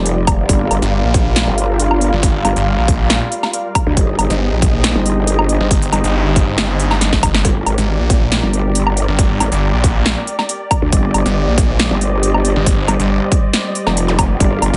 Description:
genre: heavy wobble dubstep.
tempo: 138 BPM.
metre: 4/4.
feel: half-time.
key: unclear.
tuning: A4 = 440 Hz.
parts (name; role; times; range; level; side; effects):
rich studio string section; sustained chords; 0.0-14.8 s; G3 to F5; -24 LUFS; equal; sidechain pumping, low-pass filter.
growl bass; bass; 0.0-14.7 s; F1 to D2; -18 LUFS; equal; chorus, overdrive.
big-room dance drum kit; drums; 0.1-14.8 s; hi-hat, snare drum, woodblock; -20 LUFS; equal; none.
electronic kick drum; drums; 0.3-14.5 s; none; -18 LUFS; equal; none.
snarling distorted saw bass; bass; 0.8-14.8 s; G1 to Bb1; -19 LUFS; equal; distortion, overdrive.
zap; sound effects; 14.1-14.2 s; none; -28 LUFS; equal; none.
room: digital ambience.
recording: nothing above 11.0 kHz.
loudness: -15 LUFS.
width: mono.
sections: 0.0-14.8 A section.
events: drum fill 7.0-7.4.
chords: 0.5 Bb/G; 4.0 Ab/G; 7.4 Gm; 10.9 Cmadd9/G.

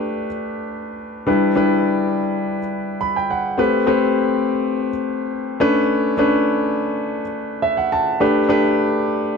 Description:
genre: soul.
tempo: 104 BPM.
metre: 4/4.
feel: straight.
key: unclear.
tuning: A4 = 442 Hz.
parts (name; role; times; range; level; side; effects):
clear concert grand piano; solo; 0.0-9.4 s; G3 to B5; -17 LUFS; left 1 dB; none.
room: light reverb.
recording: dark, warm production.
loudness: -17 LUFS.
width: side -5 dB against mid.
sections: 0.0-9.4 A section.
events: grand piano fill 2.7-3.6, 7.3-8.2.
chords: 0.0 A9sus4; 1.3 Em7; 3.6 Am9; 5.6 Bm9; 8.2 A9sus4.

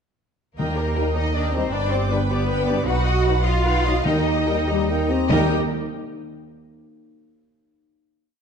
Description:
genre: cinematic, heroic adventure film score.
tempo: 95-106 BPM (dotted quarters).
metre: 6/8.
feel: straight.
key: unclear.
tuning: A4 = 440 Hz.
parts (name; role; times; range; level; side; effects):
warm symphonic violin section; melody; 0.6-5.5 s; Bb4 to F#5; -28 LUFS; left 5 dB; none.
warm symphonic violin section; second line; 0.6-5.5 s; Bb4 to D#6; -31 LUFS; left 1 dB; none.
warm symphonic viola section; accompaniment; 0.6-5.5 s; D4 to Eb5; -28 LUFS; right 1 dB; none.
rich symphonic cello section; bass; 0.6-5.5 s; Bb3 to F#4; -26 LUFS; right 2 dB; none.
warm studio double bass section; bass; 0.6-5.5 s; G1 to Eb2; -23 LUFS; right 2 dB; none.
timpani; percussion; 0.6-1.1, 4.1-5.5 s; Eb3; -27 LUFS; equal; none.
mellow French horn section; sustained chords; 1.0-5.5 s; F#3 to D#4; -28 LUFS; left 4 dB; none.
room: moderate scoring stage reverb, RT60 1.6 s.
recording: dark, warm production.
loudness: -19 LUFS.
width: side -6 dB against mid.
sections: 0.6-5.3 theme; 5.3-6.5 final chord.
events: slowing down 2.3-5.3.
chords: 0.6 Eb; 1.7 G; 2.9 B; 4.1 Eb.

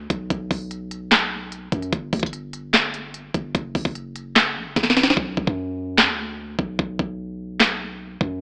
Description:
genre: hip hop, trap.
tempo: 148 BPM.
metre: 4/4.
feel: half-time.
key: B minor.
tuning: A4 = 440 Hz.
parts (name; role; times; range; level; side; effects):
long sustained 808-style bass; bass; 0.0-8.4 s; F#1 to F#2; -34 LUFS; equal; none.
trap drum kit; drums; 0.1-8.3 s; handclaps, hi-hat, kick drum, snare drum; -21 LUFS; equal; overdrive.
room: moderate plate reverb, RT60 1.4 s.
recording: AM radio sound.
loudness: -23 LUFS.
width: mono.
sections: 0.0-8.4 A section.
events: drum fill 4.8-5.2; hi-hats muted 5.2-8.4.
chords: none.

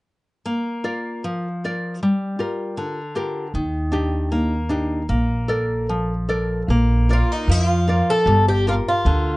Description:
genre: fado-style ballad.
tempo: 76 BPM.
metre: 2/4.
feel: rubato.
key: Bb major.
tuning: A4 = 440 Hz.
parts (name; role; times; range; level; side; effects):
nylon-string guitar; accompaniment; 0.5-9.4 s; D3 to D5; -22 LUFS; equal; none.
upright bass; bass; 3.5-9.4 s; G1 to F2; -20 LUFS; equal; none.
fingerpicked twelve-string acoustic guitar; melody; 7.1-9.4 s; Eb4 to A4; -20 LUFS; equal; none.
room: light reverb.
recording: dark, warm production, nothing above 10.9 kHz.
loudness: -19 LUFS.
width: side -20 dB against mid.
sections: 0.5-6.7 A section; 6.7-9.4 B section.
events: none.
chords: 0.5 Bb; 2.0 Gm7; 3.5 Ebmaj7; 5.1 Bbmaj7; 6.7 Bb; 8.3 Gm7.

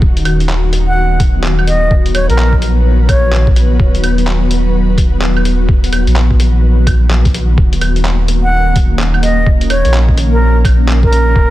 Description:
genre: future garage.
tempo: 127 BPM.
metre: 4/4.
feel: swing 62% on 16ths.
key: unclear.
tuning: A4 = 438 Hz.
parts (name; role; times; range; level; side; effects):
ethereal airy pad; sustained chords; 0.0-11.5 s; Eb3 to B4; -18 LUFS; left 1 dB; ensemble chorus, built-in reverb, sidechain pumping.
warm sub bass; bass; 0.0-11.5 s; D#1 to Bb1; -12 LUFS; equal; sidechain pumping.
electronic kick drum; drums; 0.0-11.5 s; none; -12 LUFS; equal; studio reverb.
lo-fi sampler-style drum kit; drums; 0.2-11.2 s; claves, handclaps, hi-hat; -21 LUFS; equal; studio reverb.
bright reedy concert flute; melody; 0.9-3.5, 8.4-11.5 s; Bb4 to F#5; -17 LUFS; equal; analog delay.
room: digital ambience.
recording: dense, heavily limited modern master.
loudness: -9 LUFS.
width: side -15 dB against mid.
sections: 0.0-11.5 A section.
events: none.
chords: 0.0 B/D#; 7.6 Ebm7.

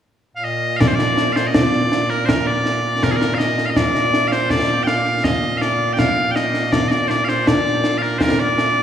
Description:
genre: scottish traditional, Scottish pipe music.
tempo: 81 BPM.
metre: 2/4.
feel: straight.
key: Bb major.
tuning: A4 = 441 Hz.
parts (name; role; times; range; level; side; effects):
loud bright bagpipes; melody; 0.4-8.8 s; Bb2 to G5; -18 LUFS; equal; none.
concert snare drum and concert bass drum; drums; 0.8-8.8 s; none; -19 LUFS; equal; none.
room: wet church reverb, RT60 2.7 s.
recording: recorded in a church or concert hall.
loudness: -15 LUFS.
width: side -9 dB against mid.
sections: 0.8-8.8 A section.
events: none.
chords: none.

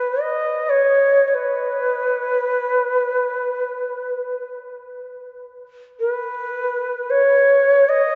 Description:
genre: world meditative, free-time meditation music.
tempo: free time.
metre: none.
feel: none.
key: unclear.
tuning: A4 = 440 Hz.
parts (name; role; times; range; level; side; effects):
mellow hollow Native American-style cedar flute; solo; 0.0-8.2 s; B4 to D#5; -20 LUFS; equal; none.
room: wet cathedral reverb, RT60 5.1 s.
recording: in a vast, echoing space, nothing above 7.8 kHz.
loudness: -19 LUFS.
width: mono.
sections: 0.0-8.2 A section.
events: none.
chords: none.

